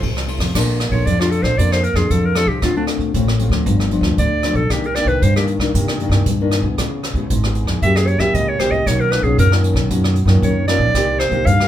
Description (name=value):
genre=samba and choro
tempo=115 BPM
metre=4/4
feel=straight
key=unclear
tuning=A4 = 445 Hz
part: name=clear clarinet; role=melody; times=0.0-11.7 s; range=D4 to F5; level=-19 LUFS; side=right 1 dB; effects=none
part: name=nylon-string guitar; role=accompaniment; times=0.0-11.7 s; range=F#2 to C5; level=-21 LUFS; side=left 3 dB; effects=none
part: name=upright bass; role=bass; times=0.0-11.7 s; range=G1 to G2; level=-18 LUFS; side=equal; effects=none
part: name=jazz brush drum kit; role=drums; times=0.0-11.7 s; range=crash cymbal, hi-hat, kick drum, ride cymbal, rim click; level=-21 LUFS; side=right 1 dB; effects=none
room=moderate studio ambience, RT60 0.5 s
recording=band playing live in one room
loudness=-14 LUFS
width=side -11 dB against mid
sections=0.6-11.7 A section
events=clarinet solo 0.6-11.7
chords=0.0 Fmaj7; 0.6 Bbmaj9; 2.6 Dm7; 3.7 G7; 4.7 Cm9; 6.8 Dbm7; 7.8 Gb7b9; 8.9 Bmaj9; 10.9 Cm7